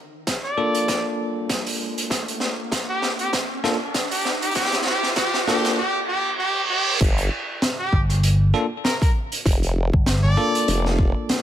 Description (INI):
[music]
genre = glitch hop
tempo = 98 BPM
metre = 4/4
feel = swing 56% on 16ths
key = G minor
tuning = A4 = 438 Hz
[part]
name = riser and reverse cymbal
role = sound effects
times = 0.1-7.0 s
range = none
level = -29 LUFS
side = right 2 dB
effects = none
[part]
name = electronic kick drum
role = drums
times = 0.3-11.1 s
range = none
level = -21 LUFS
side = equal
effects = high-pass filter on kick
[part]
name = raw garage drum kit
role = drums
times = 0.3-11.4 s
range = crash cymbal, hi-hat, rim click, snare drum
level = -25 LUFS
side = right 1 dB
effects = high-pass filter on toms, high-pass filter on hats, high-pass filter on cymbals, high-pass filter on snare, high-pass filter on room
[part]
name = brilliant trumpet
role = melody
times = 0.4-10.9 s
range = G4 to D5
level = -25 LUFS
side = equal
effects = vintage 12-bit sampler grit, low-pass filter, ping-pong delay
[part]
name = bell-like tine electric piano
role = stabs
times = 0.6-11.4 s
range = Bb3 to A4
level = -26 LUFS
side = equal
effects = fast stereo tremolo, vintage 12-bit sampler grit, sidechain pumping, low-pass filter, ping-pong delay
[part]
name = formant-sweep wobble bass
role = bass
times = 7.0-11.1 s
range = F1 to G1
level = -22 LUFS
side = equal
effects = chorus
[part]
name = slap bass with an envelope filter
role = bass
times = 7.9-10.4 s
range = G1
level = -18 LUFS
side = equal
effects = none
[sound]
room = light reverb, small room ambience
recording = none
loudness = -19 LUFS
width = side -11 dB against mid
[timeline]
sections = 0.0-7.0 A section; 7.0-11.4 B section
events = build-up 0.0-7.0; drum fill 0.0-5.8; riser 0.1-5.8; reverse cymbal 5.8-7.0; drop 7.0-11.4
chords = 0.0 Bbmaj7; 7.0 Gm7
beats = 0.27 0.88 1.50 | 2.11 2.72 3.33 3.94 | 4.56 5.17 5.78 6.39 | 7.01 7.62 8.23 8.84 | 9.46 10.07 10.68 11.29